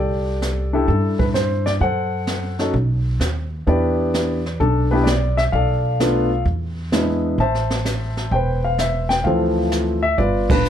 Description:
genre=jazz piano trio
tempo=129 BPM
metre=4/4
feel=swing 68% on 8ths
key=unclear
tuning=A4 = 441 Hz
part: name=warm grand piano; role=melody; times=0.0-10.7 s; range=E3 to A5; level=-20 LUFS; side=left 2 dB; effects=none
part: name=upright bass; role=bass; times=0.0-10.7 s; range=E1 to G2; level=-22 LUFS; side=equal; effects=none
part: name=jazz brush drum kit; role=drums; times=0.4-10.7 s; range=brushed snare drum, hi-hat, kick drum, ride cymbal, snare drum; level=-25 LUFS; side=right 2 dB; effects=none
room=light reverb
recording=dark, warm production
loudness=-17 LUFS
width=side -9 dB against mid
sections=0.0-10.7 A section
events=band accent 10.4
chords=0.0 C69; 1.8 F#m; 2.7 B; 3.7 Em7; 5.5 Bm7b5; 6.5 E7; 7.4 Amadd9; 9.3 Dm7; 10.2 G7

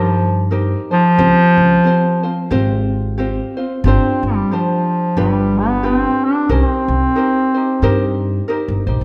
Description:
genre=Hawaiian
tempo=90 BPM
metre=4/4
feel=swing 58% on 8ths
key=C minor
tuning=A4 = 440 Hz
part: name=warm bass clarinet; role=melody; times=0.0-8.5 s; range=F3 to D4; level=-17 LUFS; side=equal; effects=none
part: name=ukulele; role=accompaniment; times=0.0-9.0 s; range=C4 to C5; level=-24 LUFS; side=equal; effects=none
part: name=upright bass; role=bass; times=0.0-9.0 s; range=G1 to G2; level=-20 LUFS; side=equal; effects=none
room=wet recital hall reverb, RT60 1.4 s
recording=dark, warm production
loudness=-16 LUFS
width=mono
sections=0.0-9.0 A section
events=none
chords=0.0 Cm7; 1.2 Dbmaj7#11 (rootless); 3.8 G7sus4; 5.2 G7; 6.5 Cm7

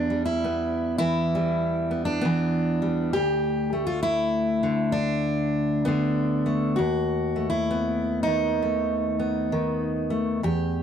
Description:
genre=folk, solo fingerstyle acoustic guitar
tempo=66 BPM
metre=4/4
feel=swing 62% on 8ths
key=unclear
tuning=A4 = 443 Hz
part: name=fingerpicked steel-string acoustic guitar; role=solo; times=0.0-10.8 s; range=D2 to G4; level=-22 LUFS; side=equal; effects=none
room=light reverb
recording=dry, close 1970s-style studio recording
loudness=-22 LUFS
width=side -8 dB against mid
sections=0.0-10.8 A section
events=none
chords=0.0 Em7; 3.2 Dsus2; 6.8 B7/D#

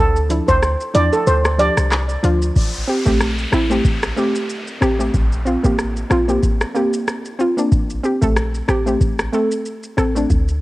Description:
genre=dancehall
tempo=93 BPM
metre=4/4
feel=swing 56% on 16ths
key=A phrygian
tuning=A4 = 441 Hz
part: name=steel pan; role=melody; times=0.0-1.7 s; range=A4 to D5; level=-18 LUFS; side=right 1 dB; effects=tape echo
part: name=warm 808-style bass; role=bass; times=0.0-10.6 s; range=A1 to E2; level=-20 LUFS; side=equal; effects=none
part: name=booming analog drum machine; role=drums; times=0.2-10.6 s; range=handclaps, hi-hat, kick drum, rim click, shaker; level=-20 LUFS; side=equal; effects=cassette tape
part: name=soft round pluck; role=accompaniment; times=0.3-10.3 s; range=F3 to A4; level=-20 LUFS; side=equal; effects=chorus, cassette tape
part: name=downlifter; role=sound effects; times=2.6-7.7 s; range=none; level=-30 LUFS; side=left 1 dB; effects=none
room=light reverb, digital ambience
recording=home recording on cassette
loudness=-15 LUFS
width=side -18 dB against mid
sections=0.0-2.6 A section; 2.6-10.6 B section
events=kick muted 1.3-2.6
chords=0.0 Dmadd9; 2.6 Am7; 5.1 Bbsus2; 7.7 Am7

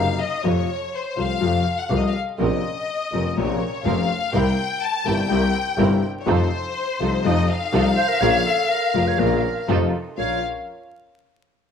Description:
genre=tango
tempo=124 BPM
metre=4/4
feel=rubato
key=Bb harmonic minor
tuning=A4 = 440 Hz
part: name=bright symphonic violin section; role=second line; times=0.0-10.4 s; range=C5 to A5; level=-24 LUFS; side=left 5 dB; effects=none
part: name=dark concert grand piano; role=accompaniment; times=0.0-10.4 s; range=F1 to F4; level=-23 LUFS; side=left 6 dB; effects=none
part: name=clear double bass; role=bass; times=0.0-10.4 s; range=F1 to F2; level=-24 LUFS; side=right 2 dB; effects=none
part: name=dark studio string section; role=stabs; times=2.4-10.4 s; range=C4 to Bb4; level=-29 LUFS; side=right 8 dB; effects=none
part: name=mellow clarinet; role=second line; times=8.0-10.4 s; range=A4 to Db5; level=-26 LUFS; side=right 9 dB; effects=none
room=wet spring reverb, RT60 1.3 s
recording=1960s-style stereo with parts hard left and right, vinyl crackle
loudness=-19 LUFS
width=side -7 dB against mid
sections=0.0-10.2 A section; 10.2-11.7 B section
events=violin section solo 0.0-10.2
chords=0.4 F; 2.4 Bbmadd9; 4.3 C7; 6.3 F7; 8.2 Bbm; 9.7 F7; 10.2 Bbm

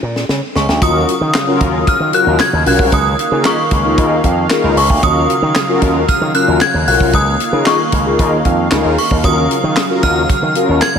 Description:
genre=early-eighties boogie funk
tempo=114 BPM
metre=4/4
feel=straight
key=Eb minor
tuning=A4 = 440 Hz
part: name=slap bass with an envelope filter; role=bass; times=0.0-11.0 s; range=Cb2 to Eb3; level=-17 LUFS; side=equal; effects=none
part: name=tight funk drum kit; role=drums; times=0.2-10.9 s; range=handclaps, hi-hat, kick drum, snare drum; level=-18 LUFS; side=equal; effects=none
part: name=synth chime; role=melody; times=0.6-11.0 s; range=Db6 to Ab6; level=-16 LUFS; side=left 1 dB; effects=ensemble chorus, phaser, tape echo
part: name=mellow synth brass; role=accompaniment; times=0.8-10.8 s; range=Db4 to Bb4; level=-16 LUFS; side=left 2 dB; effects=chorus
part: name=warm analog pad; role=sustained chords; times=0.8-11.0 s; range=Db3 to F5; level=-22 LUFS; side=right 3 dB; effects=chorus
room=moderate huge ambient reverb, RT60 4.3 s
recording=dreamy mix soaked in reverb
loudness=-11 LUFS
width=side -7 dB against mid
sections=0.8-11.0 A section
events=drum fill 0.0-0.8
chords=0.0 N.C.; 0.8 Ebm9; 2.9 Db69; 5.0 Ebm9; 7.1 Db69; 9.2 Ebm9

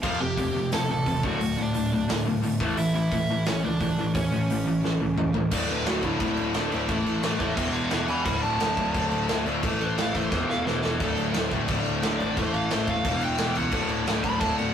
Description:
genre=punk rock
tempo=175 BPM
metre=4/4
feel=straight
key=unclear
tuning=A4 = 440 Hz
part: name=crunchy overdriven guitar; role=melody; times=0.0-14.7 s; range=C#4 to B5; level=-30 LUFS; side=right 1 dB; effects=none
part: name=distorted electric guitar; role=riff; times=0.0-14.7 s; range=D2 to A3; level=-27 LUFS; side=left 2 dB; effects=distortion
part: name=sludgy distorted guitar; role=riff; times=0.0-14.7 s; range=D2 to A3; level=-32 LUFS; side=right 4 dB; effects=overdrive
part: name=fuzz picked electric bass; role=bass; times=0.0-14.7 s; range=D1 to D2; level=-33 LUFS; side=equal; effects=overdrive
part: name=big rock drum kit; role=drums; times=0.0-14.7 s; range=crash cymbal, hi-hat, kick drum, snare drum, toms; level=-30 LUFS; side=equal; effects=none
room=moderate stone room reverb, RT60 1.3 s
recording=rough rehearsal-room recording, warm saturation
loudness=-23 LUFS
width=side -9 dB against mid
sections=0.0-5.5 A section; 5.5-14.7 B section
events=half time 0.0-5.5; drum fill 4.8-5.5, 10.3-11.0; overdriven electric guitar solo 5.5-14.7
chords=0.0 F; 1.2 D; 2.6 A; 5.5 D5; 6.9 A; 7.6 E; 8.3 D5; 9.6 A5; 10.3 E5; 11.0 D5; 12.4 A5; 13.0 E5; 13.7 D5

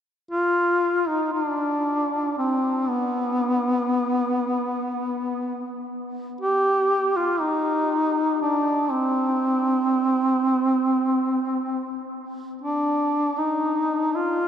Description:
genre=caucasian folk, Caucasian lament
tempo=59 BPM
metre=3/4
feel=rubato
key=unclear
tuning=A4 = 439 Hz
part: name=warm duduk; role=solo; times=0.3-14.5 s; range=B3 to G4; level=-21 LUFS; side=equal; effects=none
room=wet cathedral reverb, RT60 5.8 s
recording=in a vast, echoing space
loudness=-21 LUFS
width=side -9 dB against mid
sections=0.3-14.5 A section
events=none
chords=none

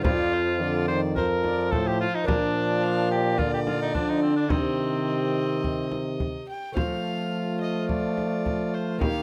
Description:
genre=classical, renaissance-style consort dance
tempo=107 BPM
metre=4/4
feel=straight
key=unclear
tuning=A4 = 442 Hz
part: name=warm violin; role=melody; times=0.0-9.2 s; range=Bb4 to G5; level=-37 LUFS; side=equal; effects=none
part: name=clear cor anglais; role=second line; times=0.0-9.2 s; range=C4 to C5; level=-32 LUFS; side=equal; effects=none
part: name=lute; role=accompaniment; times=0.0-9.2 s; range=F2 to G4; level=-34 LUFS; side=equal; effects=none
part: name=warm trombone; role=accompaniment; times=0.0-9.2 s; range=D3 to Bb3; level=-32 LUFS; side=equal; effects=none
part: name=warm trombone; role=bass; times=0.0-9.2 s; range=F2 to F3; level=-32 LUFS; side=equal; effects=none
part: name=frame drum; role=percussion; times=0.0-9.2 s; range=none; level=-31 LUFS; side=equal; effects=none
room=moderate stone room reverb, RT60 1.1 s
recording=close, detailed microphones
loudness=-26 LUFS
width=mono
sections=0.0-6.8 A section; 6.8-9.2 B section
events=none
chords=0.0 F; 2.3 Bb; 4.5 Cm; 6.8 F

